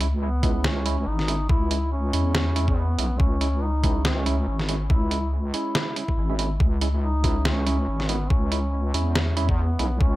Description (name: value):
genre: deep dubstep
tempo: 141 BPM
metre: 4/4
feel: swing 57% on 16ths, half-time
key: C# minor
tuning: A4 = 440 Hz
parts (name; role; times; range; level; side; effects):
- percussive organ stab; stabs; 0.0-9.9 s; G#3 to E4; -31 LUFS; right 3 dB; wide subtle chorus, dub echo
- deep soft wobble bass; bass; 0.0-10.2 s; G#1 to E2; -24 LUFS; equal; chorus
- trip hop sampler-style drum kit; drums; 0.0-9.9 s; hi-hat, snare drum; -27 LUFS; right 1 dB; none
- mellow duduk; melody; 0.2-10.2 s; B3 to E4; -30 LUFS; equal; dub echo
- electronic kick drum; drums; 0.4-10.1 s; none; -22 LUFS; equal; none
room: little or no reverb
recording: none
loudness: -21 LUFS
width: side -17 dB against mid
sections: 0.0-10.2 A section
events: none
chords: 0.0 C#m